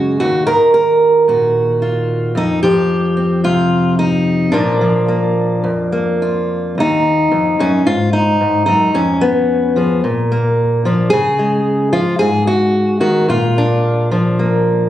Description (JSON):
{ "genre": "folk, solo fingerstyle acoustic guitar", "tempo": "110 BPM", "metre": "4/4", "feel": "rubato", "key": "Eb minor", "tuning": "A4 = 440 Hz", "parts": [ { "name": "fingerpicked steel-string acoustic guitar", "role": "solo", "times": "0.0-14.9 s", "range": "Eb2 to Bb4", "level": "-12 LUFS", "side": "equal", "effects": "none" } ], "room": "light reverb", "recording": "recorded on a phone in the room, club reverb, compression", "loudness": "-12 LUFS", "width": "side -12 dB against mid", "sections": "0.0-6.8 A section; 6.8-14.9 B section", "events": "none", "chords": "0.2 Ebm; 2.4 F5; 4.5 Bb; 6.8 Ebm; 7.9 Ab5; 9.0 Fdim; 10.0 Bb; 11.1 Db; 12.2 Ab5; 13.3 Bb" }